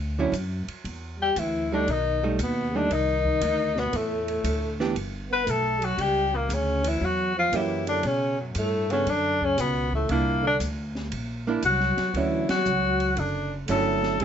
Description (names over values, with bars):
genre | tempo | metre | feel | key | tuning
jazz, small-group swing and bop | 117 BPM | 4/4 | swing 68% on 8ths | D major | A4 = 440 Hz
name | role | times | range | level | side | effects
upright bass | bass | 0.0-14.2 s | F#1 to B2 | -30 LUFS | equal | none
archtop guitar, miked and amplified | accompaniment | 0.2-14.2 s | D3 to C#5 | -27 LUFS | right 5 dB | none
open jazz drum kit | drums | 0.3-14.2 s | hi-hat, kick drum, ride cymbal, snare drum | -37 LUFS | right 2 dB | none
warm tenor saxophone | melody | 1.2-14.2 s | F#3 to B4 | -25 LUFS | left 3 dB | none
breathy trombone | second line | 1.2-14.2 s | F#2 to B3 | -31 LUFS | right 2 dB | none
room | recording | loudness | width
moderate club reverb, RT60 0.6 s | nothing above 7.8 kHz | -23 LUFS | side -8 dB against mid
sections
0.0-14.2 A section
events
band accent 12.4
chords
0.0 Dadd9; 1.9 B7alt; 3.9 Em7; 6.0 F#7b9; 8.0 Bm9; 10.1 C9; 12.2 Dmaj9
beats
0.33 0.85 1.36 | 1.88 2.39 2.90 3.42 | 3.93 4.45 4.96 5.47 | 5.99 6.50 7.02 7.53 | 8.04 8.56 9.07 9.58 | 10.10 10.61 11.12 11.64 | 12.15 12.66 13.18 13.69 | 14.20